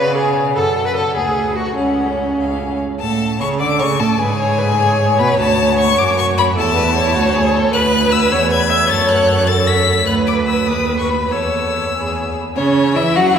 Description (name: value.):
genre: quick classical-period movement for string quartet.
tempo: 101 BPM (dotted quarters).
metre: 6/8.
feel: rubato.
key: unclear.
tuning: A4 = 442 Hz.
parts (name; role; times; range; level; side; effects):
clear violin; melody; 0.0-13.4 s; C#5 to B6; -19 LUFS; left 7 dB; none.
clear violin; second line; 0.0-13.4 s; C#4 to D5; -21 LUFS; left 2 dB; none.
warm viola; accompaniment; 0.0-13.4 s; C#4 to E5; -19 LUFS; right 1 dB; none.
rich cello; bass; 0.0-13.4 s; C#2 to F#3; -18 LUFS; right 3 dB; none.
room: wet cathedral reverb, RT60 6.5 s.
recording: recorded in a church or concert hall.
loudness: -13 LUFS.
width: side -8 dB against mid.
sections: 0.0-3.0 A section; 3.0-12.6 B section.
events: none.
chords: 0.0 C#; 0.6 F#m; 1.2 D; 1.8 F#5/C#; 3.0 Aadd11; 4.2 G#madd11; 5.4 D; 6.6 A5/E; 7.2 D; 7.7 Bm/D; 8.3 E; 8.9 F#m; 10.1 Bm/D; 10.7 B/D#; 11.3 A/E; 12.6 C#madd11.